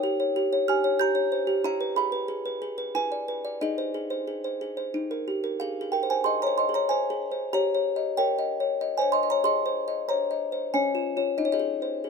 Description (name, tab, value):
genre	classical, lullaby for music box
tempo	93 BPM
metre	3/4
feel	straight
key	Ab major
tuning	A4 = 440 Hz
part	music box	solo	0.0-12.1 s	Db4 to G6	-24 LUFS	equal	none
room	light reverb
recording	minimal, uncompressed stereo recording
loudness	-24 LUFS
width	side -5 dB against mid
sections	0.0-5.6 A section; 5.6-12.1 B section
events	none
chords	0.0 Eb7; 1.6 E; 2.9 E7; 3.6 Ab/Eb; 4.9 Eb; 5.6 Ab; 7.5 Eb7/G; 9.4 Ab; 10.7 Db; 11.4 Ab/Eb